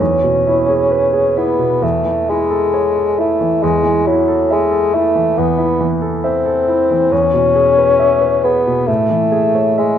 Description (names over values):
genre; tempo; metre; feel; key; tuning
classical, romantic duo for bassoon and grand piano; 68 BPM; 4/4; rubato; unclear; A4 = 440 Hz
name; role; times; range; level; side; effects
mellow bassoon; melody; 0.0-10.0 s; F#3 to C#4; -14 LUFS; left 2 dB; none
clear grand piano; accompaniment; 0.0-10.0 s; E2 to E5; -17 LUFS; right 2 dB; none
room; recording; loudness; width
moderate recital hall reverb, RT60 1.5 s; close, detailed microphones; -12 LUFS; side -9 dB against mid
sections
0.0-10.0 A section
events
none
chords
0.0 E; 1.8 A/E; 3.6 Am/E; 7.1 E; 8.9 Amaj7